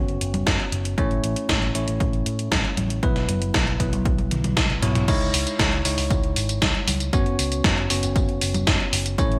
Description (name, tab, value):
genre	italo disco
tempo	117 BPM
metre	4/4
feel	straight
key	unclear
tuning	A4 = 440 Hz
part	bell-like tine electric piano	stabs	0.0-9.4 s	F#3 to C#5	-30 LUFS	equal	delay
part	picked electric bass with an envelope filter	bass	0.0-9.4 s	F#1 to A2	-29 LUFS	equal	tube saturation
part	gated 80s digital drum machine	drums	0.1-9.4 s	congas, crash cymbal, hi-hat, snare drum, tambourine, toms	-26 LUFS	equal	gated reverb, gated reverb snare, studio reverb
part	electronic kick drum	drums	0.5-9.3 s	none	-27 LUFS	equal	studio reverb
room	light reverb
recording	bright 1980s-style digital production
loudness	-22 LUFS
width	mono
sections	0.0-5.1 A section; 5.1-9.4 B section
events	drum fill 4.3-5.1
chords	0.0 F#sus4; 1.0 A; 3.0 Bsus4; 5.1 C#madd9; 7.1 F#sus4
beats	0.47 | 0.98 1.49 2.00 2.52 | 3.03 3.54 4.06 4.57 | 5.08 5.59 6.11 6.62 | 7.13 7.65 8.16 8.67 | 9.18